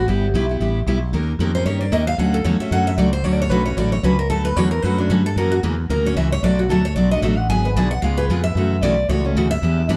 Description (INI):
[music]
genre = acoustic string swing (jazz manouche)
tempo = 226 BPM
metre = 4/4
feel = swing 57% on 8ths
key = D major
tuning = A4 = 441 Hz
[part]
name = picked steel-string acoustic guitar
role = second line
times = 0.0-10.0 s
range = D4 to G#5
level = -25 LUFS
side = equal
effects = analog delay
[part]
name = mellow fretless electric bass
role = bass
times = 0.0-10.0 s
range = G1 to G2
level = -23 LUFS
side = equal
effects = none
[part]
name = picked steel-string acoustic guitar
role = accompaniment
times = 0.1-10.0 s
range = B2 to Bb4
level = -23 LUFS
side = equal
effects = none
[sound]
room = light reverb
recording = dark, warm production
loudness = -19 LUFS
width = mono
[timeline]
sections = 0.0-4.3 A section; 4.3-10.0 A section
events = steel-string acoustic guitar solo 0.0-10.0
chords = 0.1 G69; 1.1 Eb7; 2.2 Dmaj7; 5.4 F#7; 6.4 Bm7; 7.5 G#m7b5; 8.0 C#7; 8.6 F#m7